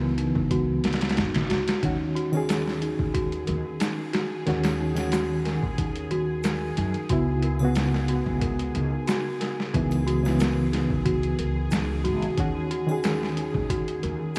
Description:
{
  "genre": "trip hop",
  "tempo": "91 BPM",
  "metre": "4/4",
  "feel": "straight",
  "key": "Eb phrygian",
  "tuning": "A4 = 440 Hz",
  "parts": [
    { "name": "reed electric piano", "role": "accompaniment", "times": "0.0-14.4 s", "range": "Db3 to Ab4", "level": "-30 LUFS", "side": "equal", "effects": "tremolo, vintage 12-bit sampler grit, tape echo" },
    { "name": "celesta", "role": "arpeggios", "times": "0.0-14.4 s", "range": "Eb4 to Bb4", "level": "-33 LUFS", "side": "equal", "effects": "vintage 12-bit sampler grit, low-pass filter, tape echo" },
    { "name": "upright bass", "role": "bass", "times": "0.0-14.2 s", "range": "Ab1 to Gb2", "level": "-33 LUFS", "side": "equal", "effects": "none" },
    { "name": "boom bap sampler-style drum kit", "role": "drums", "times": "0.2-14.4 s", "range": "hi-hat, kick drum, snare drum", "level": "-31 LUFS", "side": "equal", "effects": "overdrive" },
    { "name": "bowed-like drone", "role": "texture", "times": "3.3-14.4 s", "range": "Ab4", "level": "-41 LUFS", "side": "equal", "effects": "built-in reverb, phaser" },
    { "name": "triangle and egg shaker", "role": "percussion", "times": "2.3-14.4 s", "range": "none", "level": "-53 LUFS", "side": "equal", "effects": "none" }
  ],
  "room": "moderate huge ambient reverb, RT60 4.9 s",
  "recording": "dreamy mix soaked in reverb, vinyl crackle, small room ambience",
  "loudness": "-26 LUFS",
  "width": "mono",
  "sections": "0.0-14.4 A section",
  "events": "none",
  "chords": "0.0 Dbm7; 1.8 Ebm7; 7.1 Dbm7; 12.4 Ebm7"
}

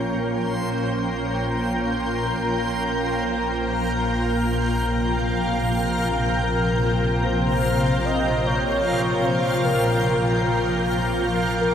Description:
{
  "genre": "ambient",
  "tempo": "free time",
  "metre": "none",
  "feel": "none",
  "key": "Bb dorian",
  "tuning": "A4 = 443 Hz",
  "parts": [
    { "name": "shimmering ambient pad", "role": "sustained chords", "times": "0.0-11.7 s", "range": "Bb2 to G5", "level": "-22 LUFS", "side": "left 1 dB", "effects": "chorus, built-in reverb" },
    { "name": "muted symphonic double bass section", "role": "bass", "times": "0.0-11.7 s", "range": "Bb1", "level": "-28 LUFS", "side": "equal", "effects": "none" },
    { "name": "bowed-like drone", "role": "drone", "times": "0.0-11.7 s", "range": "Bb3", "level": "-30 LUFS", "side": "right 1 dB", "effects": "built-in reverb" },
    { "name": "backwards swelling texture", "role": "texture", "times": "0.0-11.7 s", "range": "C5 to F6", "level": "-30 LUFS", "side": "equal", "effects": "built-in reverb" },
    { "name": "warm velvety synth lead", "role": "melody", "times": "6.4-11.7 s", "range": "Bb4 to Eb5", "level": "-26 LUFS", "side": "equal", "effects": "chorus, tape echo" }
  ],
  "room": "wet shimmer reverb, RT60 7.4 s",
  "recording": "none",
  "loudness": "-20 LUFS",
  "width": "side -8 dB against mid",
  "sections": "0.0-11.7 A section",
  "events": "fade-in on synth texture 0.0-11.7",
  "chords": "0.0 Bbm69"
}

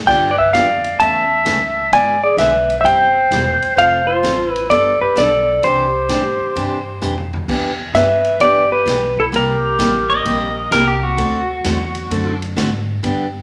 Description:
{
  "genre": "country, western swing",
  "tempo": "130 BPM",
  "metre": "4/4",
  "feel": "swing 65% on 8ths",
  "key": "C major",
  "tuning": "A4 = 440 Hz",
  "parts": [
    { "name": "upright bass", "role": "bass", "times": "0.0-13.4 s", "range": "E1 to A2", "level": "-28 LUFS", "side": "equal", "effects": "none" },
    { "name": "clean lap steel guitar", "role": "melody", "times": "0.1-11.0 s", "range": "A4 to A5", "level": "-17 LUFS", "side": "equal", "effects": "none" },
    { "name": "breathy clarinet", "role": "second line", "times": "0.1-11.0 s", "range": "E4 to E5", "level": "-23 LUFS", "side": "equal", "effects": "none" },
    { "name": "picked steel-string acoustic guitar", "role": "accompaniment", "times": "0.1-13.3 s", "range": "C3 to A4", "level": "-25 LUFS", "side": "equal", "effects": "none" },
    { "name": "swinging big-band drum kit", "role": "drums", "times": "0.1-13.2 s", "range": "crash cymbal, hi-hat, kick drum, ride cymbal, snare drum, toms", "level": "-30 LUFS", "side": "equal", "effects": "none" },
    { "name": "pedal steel guitar", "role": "second line", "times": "10.1-12.4 s", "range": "F#4 to Eb5", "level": "-21 LUFS", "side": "equal", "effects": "none" }
  ],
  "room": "wet large studio reverb, RT60 1.1 s",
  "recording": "none",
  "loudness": "-16 LUFS",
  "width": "mono",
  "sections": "0.0-7.5 A section; 7.5-13.4 B section",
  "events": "drum fill 7.0-7.5",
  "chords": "0.0 G7; 1.0 A; 1.9 E7/G#; 2.9 C/G; 3.8 F; 4.7 Gadd9; 5.6 Cadd9; 7.5 Em7; 9.3 C7; 11.2 D7"
}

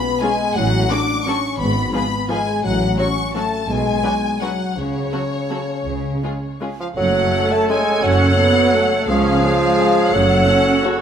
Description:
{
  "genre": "classical, orchestral ballroom waltz",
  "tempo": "154-186 BPM",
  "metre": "3/4",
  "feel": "rubato",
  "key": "F# minor",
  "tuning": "A4 = 440 Hz",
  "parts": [
    { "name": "rich studio violin section", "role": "melody", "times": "0.0-10.9 s", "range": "G#4 to D6", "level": "-24 LUFS", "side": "left 4 dB", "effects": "none" },
    { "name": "mellow French horn section", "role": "sustained chords", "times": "0.0-11.0 s", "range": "C#3 to A4", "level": "-24 LUFS", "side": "left 4 dB", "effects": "none" },
    { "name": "warm studio violin section", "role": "second line", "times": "0.2-11.0 s", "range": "E#4 to A5", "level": "-22 LUFS", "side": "left 2 dB", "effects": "none" },
    { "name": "warm studio viola section", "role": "accompaniment", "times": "0.2-11.0 s", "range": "F3 to F#4", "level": "-24 LUFS", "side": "right 2 dB", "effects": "none" },
    { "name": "warm studio cello section", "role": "bass", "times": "0.6-10.4 s", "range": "C#2 to C#3", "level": "-25 LUFS", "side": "right 1 dB", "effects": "none" },
    { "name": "warm studio double bass section", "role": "bass", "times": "0.6-10.4 s", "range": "F#1 to C#2", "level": "-25 LUFS", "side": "right 3 dB", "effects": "none" },
    { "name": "warm bassoon", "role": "accompaniment", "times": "6.8-11.0 s", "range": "C#3 to A3", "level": "-18 LUFS", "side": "right 2 dB", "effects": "none" },
    { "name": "mellow clarinet", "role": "second line", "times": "7.0-11.0 s", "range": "G#4 to A4", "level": "-24 LUFS", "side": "left 1 dB", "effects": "none" },
    { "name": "mellow hollow small flute group", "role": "second line", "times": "7.0-11.0 s", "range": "C#5", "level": "-28 LUFS", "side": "right 1 dB", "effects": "none" }
  ],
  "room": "wet recital hall reverb, RT60 1.6 s",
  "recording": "none",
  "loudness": "-15 LUFS",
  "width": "side -8 dB against mid",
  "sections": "0.0-7.0 A section; 7.0-11.0 B section",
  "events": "none",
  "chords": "0.0 C#7(no3)/B; 0.6 F#m/A; 1.6 Fdim/Ab; 2.6 F#m/A; 3.7 Bm; 4.8 F#5/C#; 5.9 C#5; 7.0 F#m; 9.1 C#; 10.1 F#m"
}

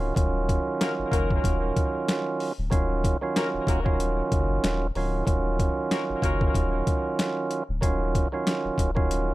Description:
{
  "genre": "hip hop, boom-bap hip-hop",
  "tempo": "94 BPM",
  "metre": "4/4",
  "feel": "swing 57% on 16ths",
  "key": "Eb minor",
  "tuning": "A4 = 439 Hz",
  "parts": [
    { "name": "percussive tonewheel organ", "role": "accompaniment", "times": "0.0-9.3 s", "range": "Eb3 to F4", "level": "-27 LUFS", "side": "right 3 dB", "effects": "overdrive, high-pass filter, low-pass filter" },
    { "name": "saturated sub bass", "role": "bass", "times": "0.0-9.3 s", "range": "D1 to Gb1", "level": "-29 LUFS", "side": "left 1 dB", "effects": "none" },
    { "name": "boom bap sampler-style drum kit", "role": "drums", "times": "0.2-9.3 s", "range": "hi-hat, kick drum, snare drum", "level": "-26 LUFS", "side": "left 1 dB", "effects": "none" },
    { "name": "warm saxophone section", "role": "stabs", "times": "0.8-6.4 s", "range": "Bb3 to Bb4", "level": "-33 LUFS", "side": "left 4 dB", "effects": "high-pass filter, low-pass filter, ping-pong delay" }
  ],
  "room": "light reverb",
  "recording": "none",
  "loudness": "-23 LUFS",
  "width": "side -18 dB against mid",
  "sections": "0.0-7.8 A section; 7.8-9.3 A section",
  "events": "none",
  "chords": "0.0 Ebm9"
}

